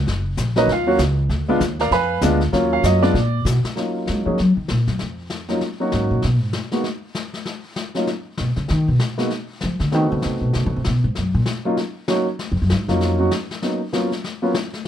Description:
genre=jazz piano trio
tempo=195 BPM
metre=4/4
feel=swing 60% on 8ths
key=Eb minor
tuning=A4 = 440 Hz
part: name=upright bass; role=bass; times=0.0-13.3 s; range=F#1 to Ab3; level=-20 LUFS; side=equal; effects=none
part: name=vintage brush drum kit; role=drums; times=0.1-14.9 s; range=brushed snare drum, hi-hat, kick drum, snare drum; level=-28 LUFS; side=left 4 dB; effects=none
part: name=warm grand piano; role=melody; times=0.6-14.5 s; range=F#3 to Cb6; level=-20 LUFS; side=right 1 dB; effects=none
room=little or no reverb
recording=dark, warm production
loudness=-18 LUFS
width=side -10 dB against mid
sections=0.0-3.8 A section; 3.8-14.9 A section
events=grand piano solo 0.0-3.8; upright bass solo 3.8-14.9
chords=0.0 Bmaj7 (rootless); 1.3 Bb7b9 (rootless); 2.5 Ebm9; 3.2 Bb; 3.8 Ebm9; 6.2 Abm; 7.5 N.C.; 8.7 Abm (rootless); 9.9 Adim7; 11.2 Ebm9; 13.6 Bmaj7(no3)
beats=| 0.07 0.38 0.69 1.00 | 1.30 1.61 1.92 2.23 | 2.54 2.84 3.15 3.46 | 3.77 4.07 4.38 4.69 | 5.00 5.31 5.61 5.92 | 6.23 6.54 6.85 7.15 | 7.46 7.77 8.08 8.39 | 8.69 9.00 9.31 9.62 | 9.93 10.23 10.54 10.85 | 11.16 11.47 11.77 12.08 | 12.39 12.70 13.01 13.31 | 13.62 13.93 14.24 14.54 | 14.85

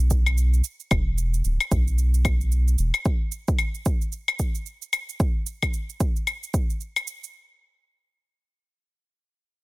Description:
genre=organic downtempo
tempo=112 BPM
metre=4/4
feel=swing 60% on 16ths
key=unclear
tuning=A4 = 440 Hz
part: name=round analog bass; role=bass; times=0.0-2.9 s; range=D1 to B1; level=-20 LUFS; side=equal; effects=sidechain pumping
part: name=electronic kick drum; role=drums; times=0.1-6.7 s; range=none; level=-23 LUFS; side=equal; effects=overdrive
part: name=shaker and claves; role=drums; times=0.1-7.3 s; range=none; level=-27 LUFS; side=left 4 dB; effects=none
room=little or no reverb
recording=none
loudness=-22 LUFS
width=side -21 dB against mid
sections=0.0-7.3 A section; 7.3-9.6 B section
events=filter sweep on analog synth bass 0.0-3.1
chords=none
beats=0.37 | 0.91 1.44 1.98 2.52 | 3.05 3.59 4.12 4.66 | 5.19 5.73 6.27 6.80

